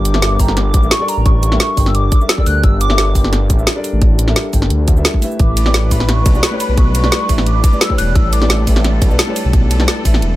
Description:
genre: liquid drum and bass.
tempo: 174 BPM.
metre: 4/4.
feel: straight.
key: unclear.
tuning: A4 = 440 Hz.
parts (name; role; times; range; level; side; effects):
hollow clarinet-like synth lead; melody; 0.0-3.1, 5.4-8.7 s; Bb5 to F#6; -21 LUFS; equal; analog chorus, digital delay.
felt-muted upright piano; accompaniment; 0.0-10.4 s; G3 to G5; -22 LUFS; left 1 dB; digital delay.
swelling detuned saw bass; bass; 0.0-10.4 s; E1 to D2; -15 LUFS; equal; none.
drum and bass drum kit; drums; 0.1-10.3 s; hi-hat, ride cymbal, shaker, snare drum; -18 LUFS; equal; none.
electronic kick drum; drums; 0.4-10.1 s; none; -13 LUFS; equal; none.
muted studio string section; sustained chords; 5.4-10.4 s; G3 to B4; -25 LUFS; left 1 dB; sidechain pumping.
room: little or no reverb.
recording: none.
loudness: -11 LUFS.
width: side -16 dB against mid.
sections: 0.0-10.4 A section.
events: none.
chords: 0.0 Gm6; 5.4 A9sus4.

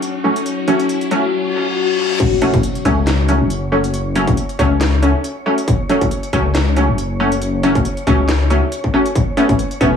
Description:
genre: deep dubstep.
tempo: 138 BPM.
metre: 4/4.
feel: swing 55% on 16ths, half-time.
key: F# minor.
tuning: A4 = 444 Hz.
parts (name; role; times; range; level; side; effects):
deep dark ambient pad; sustained chords; 0.0-2.2 s; F#4 to F#5; -21 LUFS; left 8 dB; chorus, built-in reverb.
garage drum kit; drums; 0.0-9.9 s; crash cymbal, hi-hat, snare drum; -24 LUFS; equal; none.
riser, reverse cymbal and impact; sound effects; 0.0-3.9 s; none; -23 LUFS; left 3 dB; none.
wind-like tuned noise texture; texture; 0.0-10.0 s; C#5; -30 LUFS; right 1 dB; built-in reverb.
filtered dub chord stab; stabs; 0.2-9.9 s; F#3 to C#4; -18 LUFS; equal; lush chorus, dub echo.
electronic kick drum; drums; 2.2-9.9 s; none; -19 LUFS; left 1 dB; distortion.
dark detuned saw bass; bass; 2.5-10.0 s; E1 to C#2; -17 LUFS; left 2 dB; none.
room: light reverb.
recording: vinyl crackle.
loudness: -14 LUFS.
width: side -7 dB against mid.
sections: 0.0-2.2 A section; 2.2-10.0 B section.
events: build-up 0.0-2.2; riser 0.0-2.2; filter sweep on ambient pad 0.0-2.2; reverse cymbal 1.3-2.2; drop 2.2-10.0; impact 2.2-3.9.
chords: 0.0 F#m; 9.2 Aadd9.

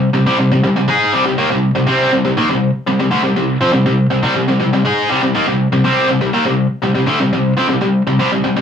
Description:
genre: rock.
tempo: 121 BPM.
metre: 4/4.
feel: straight.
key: C minor.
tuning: A4 = 440 Hz.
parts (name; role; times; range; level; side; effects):
tight distorted guitar; solo; 0.0-8.6 s; C3 to Ab4; -12 LUFS; equal; distortion.
room: moderate studio reverb, RT60 0.6 s.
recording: none.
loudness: -12 LUFS.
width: side -8 dB against mid.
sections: 0.0-8.6 A section.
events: none.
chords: 0.0 C5.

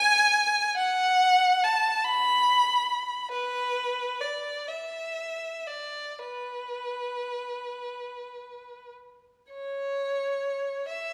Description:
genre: classical, free, expressive piece for unaccompanied violin.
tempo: 27-50 BPM (dotted quarters).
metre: 6/8.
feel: rubato.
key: unclear.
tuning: A4 = 440 Hz.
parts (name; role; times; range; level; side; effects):
rich violin; solo; 0.0-11.1 s; B4 to B5; -27 LUFS; equal; none.
room: moderate concert hall reverb, RT60 1.9 s.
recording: none.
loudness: -27 LUFS.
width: mono.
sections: 0.0-9.5 A section; 9.5-11.1 B section.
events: none.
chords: none.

